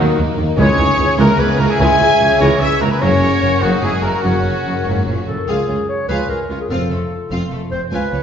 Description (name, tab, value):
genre	cinematic, heroic adventure film score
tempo	148 BPM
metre	3/4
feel	straight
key	unclear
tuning	A4 = 440 Hz
part	warm symphonic violin section	melody	0.0-8.2 s	F#4 to G#5	-26 LUFS	left 3 dB	none
part	bright concert flute	second line	0.0-5.1 s	F#5 to G#6	-25 LUFS	left 4 dB	none
part	warm oboe	second line	0.0-5.1 s	C#4 to E5	-22 LUFS	right 4 dB	none
part	warm symphonic violin section	second line	0.0-8.2 s	A3 to G#4	-26 LUFS	left 1 dB	none
part	warm studio viola section	accompaniment	0.0-8.2 s	C#3 to F4	-25 LUFS	equal	none
part	dark French horn section	sustained chords	0.0-8.1 s	F#3 to G#4	-23 LUFS	left 3 dB	none
part	concert harp	arpeggios	0.0-8.2 s	F#2 to A#5	-25 LUFS	left 7 dB	none
part	mellow trumpet section	stabs	0.0-5.0 s	F#4 to G#5	-19 LUFS	equal	none
part	rich studio double bass section	bass	0.0-8.2 s	F1 to D#2	-22 LUFS	right 2 dB	none
part	warm symphonic cello section	bass	0.0-8.2 s	C#2 to A#2	-21 LUFS	right 2 dB	none
part	warm tuba	bass	0.0-5.4 s	F#1 to D#2	-22 LUFS	right 2 dB	none
part	mellow clarinet	second line	5.3-8.2 s	Ab4 to Db5	-23 LUFS	equal	none
room	wet recital hall reverb, RT60 1.2 s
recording	recorded in a church or concert hall, nothing above 7.6 kHz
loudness	-13 LUFS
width	side -8 dB against mid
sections	0.0-5.5 A section; 5.5-8.2 B section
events	none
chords	0.0 D#m; 0.6 C#m; 3.0 F#; 5.5 Db; 6.7 F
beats	0.18 | 0.58 0.99 1.39 | 1.80 2.20 2.61 | 3.01 3.42 3.82 | 4.24 4.65 5.07 | 5.48 5.89 6.30 | 6.71 7.11 7.51 | 7.92